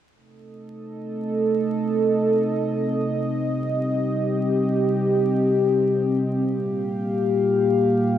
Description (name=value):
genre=trip hop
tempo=free time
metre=none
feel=none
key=unclear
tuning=A4 = 440 Hz
part: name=dark analog pad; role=sustained chords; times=0.8-8.2 s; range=Bb3 to F5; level=-20 LUFS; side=equal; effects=chorus
room=moderate spring reverb, RT60 1.3 s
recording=dark, warm production, vinyl crackle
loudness=-20 LUFS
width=side -10 dB against mid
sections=0.1-8.2 A section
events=none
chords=0.1 Adim; 6.5 Gm7/Bb